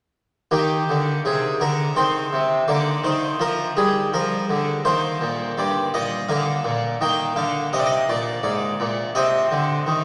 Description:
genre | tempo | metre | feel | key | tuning
classical, baroque-style suite movement for harpsichord | 83 BPM | 3/4 | rubato | Eb major | A4 = 440 Hz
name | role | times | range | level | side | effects
harpsichord | solo | 0.5-10.0 s | G2 to G5 | -22 LUFS | equal | none
room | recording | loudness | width
wet cathedral reverb, RT60 5.1 s | none | -22 LUFS | mono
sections
0.5-10.0 A section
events
none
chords
0.5 Eb; 2.0 Cm; 2.7 Bb/D; 4.9 Eb; 6.3 Bb/D; 7.0 Eb5; 9.2 Cm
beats
| 0.51 1.24 1.97 | 2.69 3.42 4.15 | 4.87 5.59 6.30 | 7.02 7.74 8.45 | 9.16 9.87

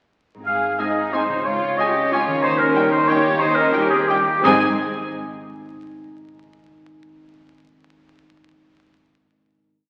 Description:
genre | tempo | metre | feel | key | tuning
classical, orchestral ballroom waltz | 165-201 BPM | 3/4 | rubato | Ab major | A4 = 440 Hz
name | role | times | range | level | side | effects
concert harp | arpeggios | 0.3-4.6 s | Ab2 to Eb5 | -32 LUFS | equal | none
clear clarinet | second line | 0.5-4.6 s | G4 to F5 | -26 LUFS | equal | none
warm oboe | second line | 0.5-4.6 s | G4 to F5 | -24 LUFS | equal | none
warm symphonic violin section | second line | 0.5-4.6 s | Bb3 to Ab5 | -29 LUFS | equal | none
dark symphonic double bass section | bass | 0.5-4.6 s | Ab1 to Eb2 | -38 LUFS | equal | none
warm symphonic violin section | melody | 0.8-4.6 s | G5 to Ab5 | -31 LUFS | equal | none
rich studio viola section | accompaniment | 0.8-4.6 s | C4 to F4 | -30 LUFS | equal | none
dark French horn section | sustained chords | 0.8-4.6 s | C4 to F4 | -33 LUFS | equal | none
mellow trombone section | sustained chords | 0.8-4.6 s | Ab2 to Ab3 | -35 LUFS | equal | none
rich symphonic cello section | bass | 0.8-4.6 s | Ab2 to G4 | -27 LUFS | equal | none
room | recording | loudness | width
wet scoring stage reverb, RT60 1.7 s | very old 78 rpm record, vinyl crackle | -19 LUFS | mono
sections
0.5-4.4 A section; 4.4-5.5 final chord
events
none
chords
0.5 Ab; 1.5 Db; 2.4 Eb7; 4.4 Ab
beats
| 0.46 0.79 1.14 | 1.46 1.78 2.12 | 2.44 2.75 3.09 | 3.40 3.73 4.09 | 4.44

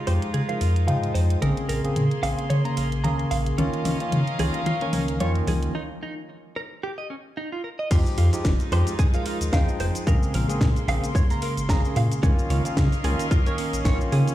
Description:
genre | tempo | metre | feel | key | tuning
nu-disco, nu disco | 111 BPM | 4/4 | swing 56% on 16ths | F minor | A4 = 439 Hz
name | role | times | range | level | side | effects
rich chamber string section | sustained chords | 0.0-14.3 s | Ab3 to C6 | -32 LUFS | right 1 dB | sidechain pumping, low-pass filter
barky tine electric piano | accompaniment | 0.1-14.3 s | Db3 to C6 | -28 LUFS | equal | medium stereo tremolo, sidechain pumping, low-pass filter, digital delay
direct-recorded clean electric guitar | riff | 0.1-14.2 s | Db4 to Bb5 | -32 LUFS | right 2 dB | analog chorus, low-pass filter, digital delay
chorused synth bass | bass | 0.1-14.2 s | F1 to Db3 | -23 LUFS | equal | none
house drum kit | drums | 0.1-14.3 s | crash cymbal, hi-hat, shaker, snare drum, toms | -29 LUFS | equal | overdrive
electronic kick drum | drums | 7.9-14.0 s | none | -21 LUFS | equal | overdrive
room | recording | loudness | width
light reverb | played on a big sound system in a bare room, large studio reverb | -21 LUFS | side -14 dB against mid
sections
0.0-7.9 A section; 7.9-14.3 B section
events
build-up 0.0-7.9; drum fill 0.0-5.7; filter sweep on tine electric piano 0.0-7.9; break 5.7-7.9; drop 7.9-14.3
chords
0.0 Fm9; 1.4 Bbm9; 3.6 Db69; 5.7 Eb5; 7.9 Fm9; 10.1 Bbm9; 12.2 Db69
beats
0.34 0.88 | 1.42 1.96 2.50 3.04 | 3.58 4.13 4.67 5.21 | 5.75 6.29 6.83 7.37 | 7.91 8.45 8.99 9.53 | 10.07 10.61 11.15 11.69 | 12.23 12.77 13.31 13.86

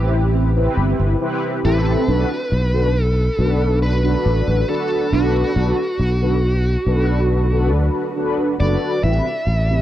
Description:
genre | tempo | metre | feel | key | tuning
vaporwave | 69 BPM | 4/4 | straight | unclear | A4 = 439 Hz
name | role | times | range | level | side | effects
mellow synth brass | accompaniment | 0.0-9.8 s | C4 to B4 | -21 LUFS | equal | analog chorus, tape echo
sustaining fretless electric bass | bass | 0.0-9.8 s | F#1 to D2 | -17 LUFS | equal | tube saturation
bluesy overdriven lead guitar | melody | 1.7-9.8 s | F#4 to E5 | -24 LUFS | equal | distortion, tape echo
room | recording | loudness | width
light reverb | dark, warm production, cassette tape | -16 LUFS | side -12 dB against mid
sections
0.0-9.8 A section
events
none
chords
0.0 Am7; 2.1 Bm7; 9.0 Am7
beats
0.34 1.21 | 2.08 2.95 3.82 4.69 | 5.56 6.43 7.30 8.17 | 9.04

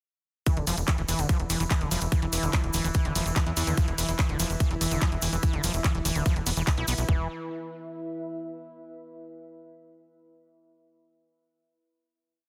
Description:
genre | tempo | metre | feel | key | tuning
psychedelic trance | 145 BPM | 4/4 | straight | unclear | A4 = 438 Hz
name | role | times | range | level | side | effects
overtone-sweeping drone | sustained chords | 0.9-7.1 s | E3 to E4 | -41 LUFS | equal | chorus, built-in reverb, sidechain pumping
overdriven acid bass | riff | 0.5-7.3 s | D3 to E4 | -35 LUFS | equal | distortion, cassette tape, sidechain pumping, delay
electronic kick drum | drums | 0.5-7.2 s | none | -27 LUFS | equal | none
garage drum kit | drums | 0.5-7.1 s | handclaps, hi-hat | -34 LUFS | equal | none
tube shaker | percussion | 0.5-7.1 s | none | -38 LUFS | equal | none
deep dark ambient pad | texture | 1.9-8.7 s | E4 to E5 | -42 LUFS | equal | chorus, built-in reverb, sidechain pumping
tight sequencer bass | bass | 0.6-7.3 s | D1 to E2 | -32 LUFS | equal | tube saturation
room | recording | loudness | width
light reverb | dense, heavily limited modern master | -27 LUFS | mono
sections
0.5-7.1 groove; 7.1-8.7 final chord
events
none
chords
0.5 E5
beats
| 0.47 0.88 1.29 1.71 | 2.12 2.53 2.95 3.36 | 3.77 4.19 4.60 5.02 | 5.43 5.84 6.26 6.67 | 7.09 7.50 7.91 8.33

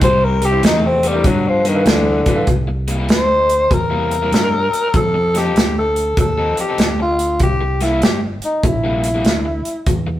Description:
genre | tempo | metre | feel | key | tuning
electric blues shuffle | 97 BPM | 4/4 | swing 66% on 8ths | C mixolydian | A4 = 439 Hz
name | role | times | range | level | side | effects
growling tenor saxophone | melody | 0.0-9.9 s | D3 to C5 | -17 LUFS | left 1 dB | none
overdriven electric guitar | riff | 0.0-10.1 s | G2 to A4 | -23 LUFS | left 2 dB | none
fingered electric bass | bass | 0.0-10.2 s | G1 to G2 | -21 LUFS | right 1 dB | none
natural country drum kit | drums | 0.0-10.1 s | hi-hat, kick drum, snare drum | -17 LUFS | right 1 dB | none
bright upright piano | accompaniment | 0.4-2.5 s | D4 to C5 | -25 LUFS | right 2 dB | none
room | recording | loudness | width
light reverb | rough rehearsal-room recording | -14 LUFS | side -13 dB against mid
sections
0.0-2.5 A section; 2.5-10.2 B section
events
tenor saxophone solo 0.0-2.5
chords
0.0 C7; 1.2 G7; 2.5 C7; 4.9 F7; 7.4 C7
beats
| 0.02 0.63 1.25 1.86 | 2.48 3.09 3.71 4.32 | 4.94 5.55 6.17 6.78 | 7.40 8.02 8.63 9.25 | 9.86

